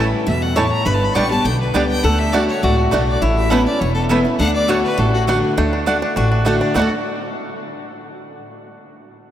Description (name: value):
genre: bluegrass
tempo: 204 BPM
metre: 4/4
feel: straight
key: D major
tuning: A4 = 442 Hz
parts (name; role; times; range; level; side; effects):
- bluegrass banjo; melody; 0.0-6.9 s; G3 to A4; -26 LUFS; right 2 dB; none
- lap resonator guitar; second line; 0.0-6.9 s; D4 to C#5; -23 LUFS; left 2 dB; none
- picked steel-string acoustic guitar; accompaniment; 0.0-6.9 s; E2 to G4; -21 LUFS; left 1 dB; none
- mandolin; stabs; 0.0-6.9 s; A3 to B5; -24 LUFS; right 3 dB; none
- upright bass; bass; 0.0-6.9 s; E1 to E2; -20 LUFS; equal; none
- clear fiddle; melody; 0.3-6.9 s; F#4 to C#6; -24 LUFS; left 2 dB; none
room: wet cathedral reverb, RT60 6.1 s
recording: in a vast, echoing space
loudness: -14 LUFS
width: side -11 dB against mid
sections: 0.0-5.6 A section; 5.6-6.8 B section; 6.8-7.9 C section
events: none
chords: 0.0 A; 0.9 G; 2.0 D; 3.2 Aadd9; 4.4 D